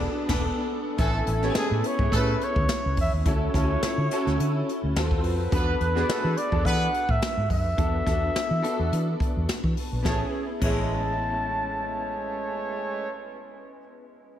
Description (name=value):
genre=polished 1980s jazz-funk pop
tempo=106 BPM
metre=4/4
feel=swing 54% on 16ths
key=A major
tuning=A4 = 439 Hz
part: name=breathy flugelhorn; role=melody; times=0.0-13.1 s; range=A4 to A5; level=-30 LUFS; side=equal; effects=tape echo
part: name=clear concert grand piano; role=accompaniment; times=0.0-14.4 s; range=G#3 to G#5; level=-30 LUFS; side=left 1 dB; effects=ensemble chorus
part: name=vintage muted fingered electric bass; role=bass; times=0.0-13.8 s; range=E1 to E3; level=-27 LUFS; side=equal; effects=none
part: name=warm horn section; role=second line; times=0.3-13.1 s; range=E3 to D5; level=-33 LUFS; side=right 2 dB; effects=tape echo
part: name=jazz brush drum kit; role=drums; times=0.3-10.8 s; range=crash cymbal, hi-hat, kick drum, snare drum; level=-28 LUFS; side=equal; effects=none
room=moderate plate reverb, RT60 2.1 s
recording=dreamy mix soaked in reverb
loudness=-23 LUFS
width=side -10 dB against mid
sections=1.0-10.1 A section; 10.1-12.3 B section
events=band accent 0.0-1.0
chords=0.0 E7sus4; 1.0 Amaj7; 3.3 Dmaj9; 5.0 D#dim7; 5.5 E7sus4; 10.1 Amaj7